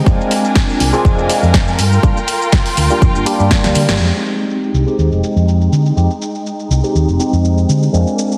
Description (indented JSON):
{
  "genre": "filtered disco house",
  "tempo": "122 BPM",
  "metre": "4/4",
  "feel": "swing 54% on 16ths",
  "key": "F dorian",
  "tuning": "A4 = 439 Hz",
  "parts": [
    { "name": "bright tine electric piano", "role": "accompaniment", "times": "0.0-8.4 s", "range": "G3 to G4", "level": "-20 LUFS", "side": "equal", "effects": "phaser, sidechain pumping, low-pass filter" },
    { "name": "rich symphonic string section", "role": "sustained chords", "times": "0.0-8.4 s", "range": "Ab3 to Ab5", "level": "-24 LUFS", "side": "equal", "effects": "sidechain pumping, low-pass filter" },
    { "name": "hollow-body short-scale fingered electric bass", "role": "bass", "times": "0.1-8.0 s", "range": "F1 to D3", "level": "-16 LUFS", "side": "equal", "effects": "sidechain pumping, low-pass filter" },
    { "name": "electronic kick drum", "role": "drums", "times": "0.1-3.6 s", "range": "none", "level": "-15 LUFS", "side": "equal", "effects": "small room reverb" },
    { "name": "maracas", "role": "percussion", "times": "0.1-4.0 s", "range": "none", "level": "-31 LUFS", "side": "equal", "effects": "sidechain pumping on perc, low-pass filter on perc" },
    { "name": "house drum kit", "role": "drums", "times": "0.3-8.4 s", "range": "crash cymbal, hi-hat, shaker, snare drum", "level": "-23 LUFS", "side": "equal", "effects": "sidechain pumping on hats, low-pass filter on hats, small room reverb, low-pass filter on snare, sidechain pumping on cymbals, low-pass filter on cymbals, sidechain pumping on perc, low-pass filter on perc" }
  ],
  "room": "light reverb",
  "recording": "heavily compressed radio sound, multiband compression",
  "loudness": "-14 LUFS",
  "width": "mono",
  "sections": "0.0-4.0 A section; 4.0-8.4 B section",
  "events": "drum fill 3.6-4.0; band accent 3.9; filter sweep on drum 4.0-8.4; filter sweep 4.0-8.4",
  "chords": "0.1 Bb7; 1.8 Gm7; 4.0 Fm9"
}